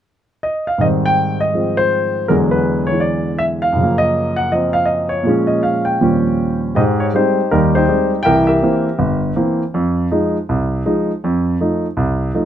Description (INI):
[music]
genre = solo jazz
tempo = 161 BPM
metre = 4/4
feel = swing 64% on 8ths, rubato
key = Ab major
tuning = A4 = 440 Hz
[part]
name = warm grand piano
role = solo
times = 0.4-12.5 s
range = G1 to G5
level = -14 LUFS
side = equal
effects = none
[sound]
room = light reverb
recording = close, detailed microphones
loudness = -14 LUFS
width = side -10 dB against mid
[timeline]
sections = 0.8-6.8 A section; 6.8-12.5 B section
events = none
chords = 0.0 N.C.; 0.8 Abmaj7; 2.3 E9; 3.8 Gbmaj7; 5.3 Bbm7; 6.0 Eb13; 6.8 Abmaj7; 8.3 C7; 9.7 Fm7; 11.2 F7